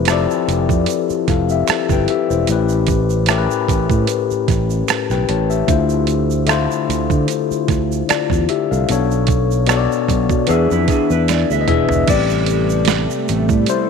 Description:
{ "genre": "R&B, neo-soul", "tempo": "75 BPM", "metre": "4/4", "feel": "swing 54% on 16ths", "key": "A minor", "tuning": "A4 = 440 Hz", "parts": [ { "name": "overdriven tine electric piano", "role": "accompaniment", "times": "0.0-13.9 s", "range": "A2 to A5", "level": "-17 LUFS", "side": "left 10 dB", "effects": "phaser" }, { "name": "fingered electric bass", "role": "bass", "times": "0.0-13.7 s", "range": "E1 to D3", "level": "-19 LUFS", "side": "right 3 dB", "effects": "none" }, { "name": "boom bap sampler-style drum kit", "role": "drums", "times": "0.1-13.9 s", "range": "crash cymbal, hi-hat, kick drum, rim click, snare drum, toms", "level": "-20 LUFS", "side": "right 6 dB", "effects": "none" }, { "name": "finger snaps and tube shaker", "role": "percussion", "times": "0.1-13.9 s", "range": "none", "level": "-30 LUFS", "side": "right 15 dB", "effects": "none" }, { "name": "electric guitar through a small old amp", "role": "second line", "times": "10.5-12.1 s", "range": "D4 to E5", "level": "-22 LUFS", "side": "right 13 dB", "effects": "wide subtle chorus" }, { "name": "chorused pulse-width pad", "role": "sustained chords", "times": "12.1-13.9 s", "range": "C3 to A3", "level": "-22 LUFS", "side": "right 4 dB", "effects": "none" } ], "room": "light reverb, digital ambience", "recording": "1960s-style stereo with parts hard left and right", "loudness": "-14 LUFS", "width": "side -6 dB against mid", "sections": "0.0-12.1 A section; 12.1-13.9 A section", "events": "drum fill 11.3-12.1; tine electric piano solo 12.1-13.9", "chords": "0.0 Fmaj9#11; 2.5 A7; 5.7 Dm9; 8.9 Bm7; 10.5 E7; 12.1 Am7" }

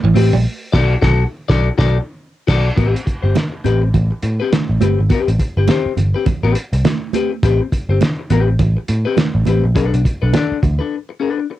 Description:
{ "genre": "funk", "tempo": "103 BPM", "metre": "4/4", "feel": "swing 60% on 16ths", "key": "A dorian", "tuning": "A4 = 441 Hz", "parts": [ { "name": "vintage muted picked electric bass", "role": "bass", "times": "0.0-10.8 s", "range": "G1 to A2", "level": "-15 LUFS", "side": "equal", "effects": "none" }, { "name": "semi-hollow electric guitar", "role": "accompaniment", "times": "0.1-11.5 s", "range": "C4 to D5", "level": "-19 LUFS", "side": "left 7 dB", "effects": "none" }, { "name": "cloth-damped thuddy drum kit", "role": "drums", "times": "0.2-10.8 s", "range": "crash cymbal, hi-hat, kick drum, snare drum", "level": "-19 LUFS", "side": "equal", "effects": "none" }, { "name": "congas", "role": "percussion", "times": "0.2-10.8 s", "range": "none", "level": "-22 LUFS", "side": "right 10 dB", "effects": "none" } ], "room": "light reverb", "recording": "home recording on cassette", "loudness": "-14 LUFS", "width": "side -14 dB against mid", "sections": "0.0-2.8 A section; 2.8-11.6 B section", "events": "band accent 0.4-2.8; break 10.9-11.6", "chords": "0.4 Bm7; 2.8 Am9; 9.8 Bm7" }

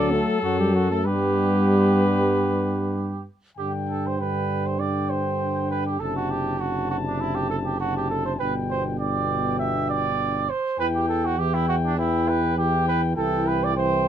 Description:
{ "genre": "classical, brass quintet", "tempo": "100 BPM", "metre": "4/4", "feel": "straight", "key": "G major", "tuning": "A4 = 441 Hz", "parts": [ { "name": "mellow trumpet", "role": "melody", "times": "0.0-14.1 s", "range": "A4 to A5", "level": "-29 LUFS", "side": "left 7 dB", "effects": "none" }, { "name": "mellow trumpet", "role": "second line", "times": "0.0-14.1 s", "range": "D4 to E5", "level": "-27 LUFS", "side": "right 7 dB", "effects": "none" }, { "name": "dark French horn", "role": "accompaniment", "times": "0.0-14.1 s", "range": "F#3 to E4", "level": "-28 LUFS", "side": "left 3 dB", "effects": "none" }, { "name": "warm trombone", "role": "accompaniment", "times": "0.0-14.1 s", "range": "B2 to B3", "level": "-31 LUFS", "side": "right 3 dB", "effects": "none" }, { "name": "mellow bass trombone", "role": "bass", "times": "0.0-14.1 s", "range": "F#1 to G2", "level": "-26 LUFS", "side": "right 1 dB", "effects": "none" } ], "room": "little or no reverb", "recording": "close, detailed microphones", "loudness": "-21 LUFS", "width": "side -9 dB against mid", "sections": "0.0-3.6 A section; 3.6-14.1 A section", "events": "none", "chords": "0.0 D; 1.1 G; 3.6 G5; 6.0 D7/F#; 8.4 G; 10.8 Em; 13.2 C" }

